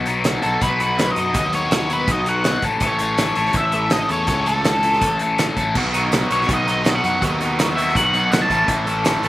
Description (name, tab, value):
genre	indie rock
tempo	164 BPM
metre	4/4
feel	straight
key	B mixolydian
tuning	A4 = 440 Hz
part	biting overdriven guitar	riff	0.0-9.3 s	A2 to A4	-21 LUFS	left 3 dB	phaser, slapback echo
part	fuzz fingered electric bass	bass	0.0-9.3 s	A1 to F#2	-26 LUFS	equal	overdrive
part	loose indie drum kit	drums	0.1-9.3 s	crash cymbal, hi-hat, kick drum, snare drum	-22 LUFS	right 1 dB	none
part	tambourine	percussion	0.1-9.1 s	none	-42 LUFS	right 3 dB	none
part	octave-fuzz lead guitar	melody	0.4-9.3 s	A4 to A5	-21 LUFS	equal	distortion
part	distorted electric guitar	riff	5.7-9.3 s	A2 to E4	-24 LUFS	right 5 dB	distortion, slapback echo
room	little or no reverb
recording	none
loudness	-16 LUFS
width	side -16 dB against mid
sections	0.0-9.3 A section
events	none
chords	0.0 B; 2.6 A; 5.8 B; 8.5 A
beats	0.25 0.62 0.99 | 1.35 1.72 2.09 2.46 | 2.82 3.19 3.56 3.92 | 4.29 4.66 5.02 5.39 | 5.75 6.12 6.49 6.85 | 7.22 7.58 7.95 8.32 | 8.68 9.05